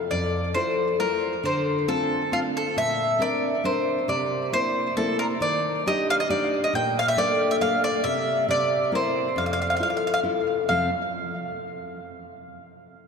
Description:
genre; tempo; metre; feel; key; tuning
italian folk, Italian serenade; 136 BPM; 3/4; straight; F major; A4 = 440 Hz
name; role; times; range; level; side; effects
mandolin; melody; 0.1-10.9 s; F4 to G5; -24 LUFS; equal; tape echo
nylon-string guitar; accompaniment; 0.1-10.9 s; F2 to E5; -27 LUFS; left 2 dB; none
room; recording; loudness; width
wet cathedral reverb, RT60 5.4 s; in a vast, echoing space; -22 LUFS; side -5 dB against mid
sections
0.1-10.7 A section; 10.7-12.0 B section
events
none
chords
0.1 Fmaj7; 1.4 Dm7; 2.7 Bbadd9; 4.1 C7; 5.4 Ebmaj7; 6.7 Bbmaj7; 8.0 N.C.; 8.5 C7; 9.4 Fmaj7

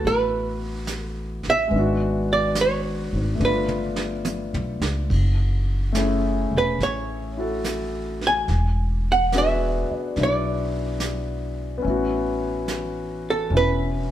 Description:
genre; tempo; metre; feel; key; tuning
jazz ballad; 71 BPM; 4/4; swing 68% on 8ths; A major; A4 = 440 Hz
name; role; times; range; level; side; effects
archtop guitar, miked and amplified; melody; 0.0-14.1 s; A4 to G#5; -22 LUFS; right 3 dB; none
warm concert grand piano; accompaniment; 0.0-14.1 s; G#3 to A4; -26 LUFS; left 3 dB; none
upright bass; bass; 0.0-14.1 s; E1 to C#2; -25 LUFS; equal; none
vintage brush drum kit; drums; 0.0-14.1 s; brushed snare drum, hi-hat, kick drum, ride cymbal, snare drum, toms; -33 LUFS; right 3 dB; none
room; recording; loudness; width
moderate stone room reverb, RT60 1.2 s; band playing live in one room; -21 LUFS; side -12 dB against mid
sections
0.0-14.1 A section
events
drum fill 3.4-5.1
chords
0.0 D69 (rootless); 1.7 G#m7b5; 3.4 G9; 5.1 F#m9; 8.5 E7; 11.8 A69

